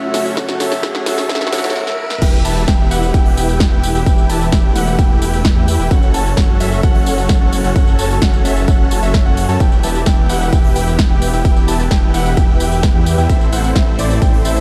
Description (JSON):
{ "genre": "EDM, festival progressive house", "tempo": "130 BPM", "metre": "4/4", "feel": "straight", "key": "E minor", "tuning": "A4 = 438 Hz", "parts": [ { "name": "breathy flute-like synth lead", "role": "melody", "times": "0.0-2.2 s", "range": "C#5 to E5", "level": "-27 LUFS", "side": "equal", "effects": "lush chorus, dub echo" }, { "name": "felt-muted upright piano", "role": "accompaniment", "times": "0.0-2.2 s", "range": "C#3 to F#4", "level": "-29 LUFS", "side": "equal", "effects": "sidechain pumping, dub echo" }, { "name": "lush unison pad", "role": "sustained chords", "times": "0.0-14.6 s", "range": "F#2 to A4", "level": "-27 LUFS", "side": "equal", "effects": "chorus, sidechain pumping" }, { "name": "supersaw chords", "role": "riff", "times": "0.0-14.6 s", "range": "C4 to A5", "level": "-24 LUFS", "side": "equal", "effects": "vintage 12-bit sampler grit, sidechain pumping, dub echo" }, { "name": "riser and swell", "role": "sound effects", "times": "0.0-2.2 s", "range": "none", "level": "-29 LUFS", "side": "equal", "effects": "none" }, { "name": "big-room dance drum kit", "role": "drums", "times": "0.1-14.6 s", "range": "crash cymbal, hi-hat, ride cymbal, snare drum, tambourine", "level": "-25 LUFS", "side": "equal", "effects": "none" }, { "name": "electronic kick drum", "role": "drums", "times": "0.4-14.3 s", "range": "none", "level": "-15 LUFS", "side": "equal", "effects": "high-pass filter on kick, high-pass filter on room" }, { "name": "warm grand piano", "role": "arpeggios", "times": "2.2-14.6 s", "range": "D5 to A5", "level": "-27 LUFS", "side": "equal", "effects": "sidechain pumping, dub echo" }, { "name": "detuned saw bass", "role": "bass", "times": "2.2-14.6 s", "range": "E1 to F#2", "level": "-20 LUFS", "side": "equal", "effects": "sidechain pumping" } ], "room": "light reverb, digital ambience", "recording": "dark, warm production, high-pass filter", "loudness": "-14 LUFS", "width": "mono", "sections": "0.0-2.2 A section; 2.2-14.6 B section", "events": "build-up 0.0-2.2; drum fill 0.0-1.8, 1.8-2.2; riser 0.0-2.2; swell 1.3-2.2; break 1.8-2.2; drop 2.2-14.6", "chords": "0.0 F#m; 2.2 Em; 5.9 F#m; 9.6 Em; 13.3 Am", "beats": "| 0.37 0.83 1.29 1.76 | 2.22 2.68 3.14 3.60 | 4.07 4.53 4.99 5.45 | 5.91 6.37 6.83 7.29 | 7.76 8.22 8.68 9.14 | 9.60 10.06 10.53 10.99 | 11.45 11.91 12.37 12.83 | 13.29 13.76 14.22" }